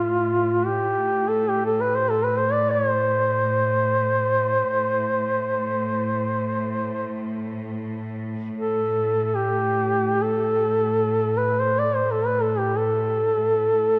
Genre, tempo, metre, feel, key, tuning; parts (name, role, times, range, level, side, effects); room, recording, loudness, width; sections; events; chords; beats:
caucasian folk, Caucasian lament; free time; A minor; A4 = 440 Hz
mellow duduk; melody; 0.0-14.0 s; F4 to D5; -23 LUFS; equal
bright symphonic cello section; drone; 0.0-14.0 s; A2; -30 LUFS; equal
wet church reverb, RT60 3.3 s; -23 LUFS; mono
0.0-14.0 A section
slowing down 7.0-14.0
free time